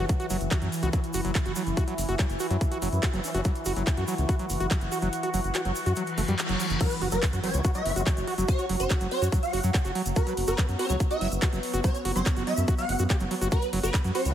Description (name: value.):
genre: psychedelic trance.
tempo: 143 BPM.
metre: 4/4.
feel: straight.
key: unclear.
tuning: A4 = 440 Hz.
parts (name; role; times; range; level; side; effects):
evolving wavetable pad; sustained chords; 0.0-14.3 s; E3 to F#4; -32 LUFS; right 1 dB; phaser, built-in reverb, sidechain pumping.
overdriven acid bass; riff; 0.0-14.2 s; F#3 to G4; -32 LUFS; right 1 dB; distortion, auto-pan, sidechain pumping, dub echo.
round analog bass; bass; 0.0-14.3 s; F#1 to F#2; -29 LUFS; equal; tube saturation.
big-room dance drum kit; drums; 0.1-14.3 s; crash cymbal, handclaps, hi-hat, ride cymbal; -35 LUFS; equal; none.
electronic kick drum; drums; 0.1-14.0 s; none; -25 LUFS; equal; none.
egg shaker; percussion; 0.1-14.3 s; none; -40 LUFS; right 1 dB; none.
vowel-sweep wobble bass; second line; 0.8-3.4, 7.5-8.0, 14.3 s; B3 to C#4; -43 LUFS; left 2 dB; none.
reverse cymbal and impact; sound effects; 6.1-8.5 s; none; -38 LUFS; left 2 dB; none.
swarming rave lead; melody; 6.8-14.3 s; B4 to F#5; -32 LUFS; equal; chorus, phaser, sidechain pumping, dub echo.
room: light reverb.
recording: heavily compressed radio sound, multiband compression.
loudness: -24 LUFS.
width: side -10 dB against mid.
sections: 0.0-6.8 A section; 6.8-14.3 B section.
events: kick drops out 5.1-6.8; reverse cymbal 6.1-6.8; band accent 6.4; drop 6.8-14.3; impact 6.8-8.5.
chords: 0.0 F#5.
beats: | 0.09 0.51 0.93 1.35 | 1.77 2.19 2.61 3.03 | 3.45 3.87 4.29 4.71 | 5.13 5.55 5.97 6.39 | 6.81 7.23 7.65 8.06 | 8.48 8.90 9.32 9.74 | 10.16 10.58 11.00 11.42 | 11.84 12.26 12.68 13.10 | 13.52 13.94.